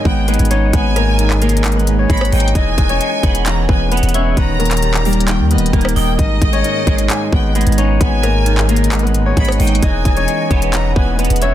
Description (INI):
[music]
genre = hip hop, trap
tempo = 132 BPM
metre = 4/4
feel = half-time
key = G# harmonic minor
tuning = A4 = 439 Hz
[part]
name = Celtic harp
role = melody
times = 0.0-11.5 s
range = G3 to D#5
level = -19 LUFS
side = left 5 dB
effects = low-pass filter, digital delay
[part]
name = clear studio violin section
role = second line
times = 0.0-11.2 s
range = D#5 to B5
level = -24 LUFS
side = equal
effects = digital delay
[part]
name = semi-hollow electric guitar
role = accompaniment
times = 0.0-11.5 s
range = G#2 to E5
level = -21 LUFS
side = right 7 dB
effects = ensemble chorus, low-pass filter
[part]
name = dark analog pad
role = sustained chords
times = 0.0-11.5 s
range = E3 to G#5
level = -28 LUFS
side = left 2 dB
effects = chorus
[part]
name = long sustained 808-style bass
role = bass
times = 0.1-11.5 s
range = D#1 to D#2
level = -16 LUFS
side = equal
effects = none
[part]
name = trap drum kit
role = drums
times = 0.1-11.5 s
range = handclaps, hi-hat, kick drum, rim click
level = -18 LUFS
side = equal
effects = none
[sound]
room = little or no reverb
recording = dense, heavily limited modern master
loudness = -12 LUFS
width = side -12 dB against mid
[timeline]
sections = 0.0-11.5 A section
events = none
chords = 0.0 G#m; 2.6 E; 4.4 D#; 6.2 G#m; 9.8 E